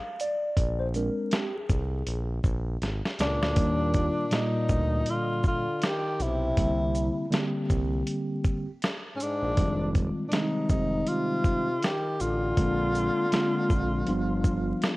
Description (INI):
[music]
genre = hip hop, jazz-hop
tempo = 80 BPM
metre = 4/4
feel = swing 59% on 16ths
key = Eb major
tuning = A4 = 440 Hz
[part]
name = mellow tine electric piano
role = accompaniment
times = 0.0-15.0 s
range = Bb2 to F5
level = -29 LUFS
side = equal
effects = slow stereo tremolo
[part]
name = dusty soul sampler-style drum kit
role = drums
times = 0.2-15.0 s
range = hi-hat, kick drum, shaker, snare drum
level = -28 LUFS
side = equal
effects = none
[part]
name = smooth synth bass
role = bass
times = 0.6-14.7 s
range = F1 to Eb2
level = -30 LUFS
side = equal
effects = none
[part]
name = breathy tenor saxophone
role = melody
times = 3.2-15.0 s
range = Db4 to G4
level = -29 LUFS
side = left 1 dB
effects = none
[part]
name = breathy trombone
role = second line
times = 3.2-14.9 s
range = Ab2 to Eb3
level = -36 LUFS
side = left 1 dB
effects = none
[sound]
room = light reverb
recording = worn, warbling old tape, cassette tape, vinyl crackle, warbly pitch drift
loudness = -25 LUFS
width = side -20 dB against mid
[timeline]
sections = 0.0-3.6 A section; 3.6-15.0 B section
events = tine electric piano solo 0.0-3.6; drum fill 2.8-3.6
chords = 0.0 N.C.; 0.6 Bb7; 3.6 Ebmaj7; 6.6 C7; 9.6 Fm7; 12.6 Bb7; 14.1 G7